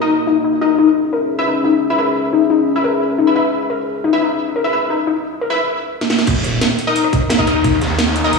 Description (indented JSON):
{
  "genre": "dark technical drum and bass",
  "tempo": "175 BPM",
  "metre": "4/4",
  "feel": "straight",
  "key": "Eb phrygian",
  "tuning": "A4 = 440 Hz",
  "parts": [
    { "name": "dark analog pad", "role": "sustained chords", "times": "0.0-6.2 s", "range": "Bb3 to E5", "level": "-21 LUFS", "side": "left 3 dB", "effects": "chorus, sidechain pumping" },
    { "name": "orchestra-hit-like synth stab", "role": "stabs", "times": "0.0-8.4 s", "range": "Eb4 to E5", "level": "-18 LUFS", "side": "left 2 dB", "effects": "built-in reverb, digital delay" },
    { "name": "warbly dusty pluck", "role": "arpeggios", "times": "0.3-5.5 s", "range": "Eb4 to Bb4", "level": "-17 LUFS", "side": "left 6 dB", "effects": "chorus, cassette tape, sidechain pumping, digital delay" },
    { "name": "drum and bass drum kit", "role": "drums", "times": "6.0-8.4 s", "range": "crash cymbal, hi-hat, rim click, snare drum", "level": "-18 LUFS", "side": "right 3 dB", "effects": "none" },
    { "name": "snarling distorted saw bass", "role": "bass", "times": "6.3-8.4 s", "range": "Eb1 to Eb2", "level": "-18 LUFS", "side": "right 1 dB", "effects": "distortion, tube saturation" },
    { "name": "crunchy breakbeat drum kit", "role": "drums", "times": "6.3-8.4 s", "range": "hi-hat, snare drum", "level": "-27 LUFS", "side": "equal", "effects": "high-pass filter on hats, high-pass filter on snare, high-pass filter on room" },
    { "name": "electronic kick drum", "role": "drums", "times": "6.3-7.7 s", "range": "none", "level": "-18 LUFS", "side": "right 1 dB", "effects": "none" }
  ],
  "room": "wet digital room reverb, RT60 1.3 s, digital ambience",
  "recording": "played on a big sound system in a bare room, large studio reverb, small room reverb, faint mains hum",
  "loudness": "-14 LUFS",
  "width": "side -3 dB against mid",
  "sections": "0.0-6.3 A section; 6.3-8.4 B section",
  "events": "filter sweep on synth arpeggio sound 0.0-6.3; filter sweep on synth stab 0.0-6.3; drum fill 6.0; drop 6.3-8.4",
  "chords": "0.0 Ebm; 0.8 E6; 6.3 Eb5"
}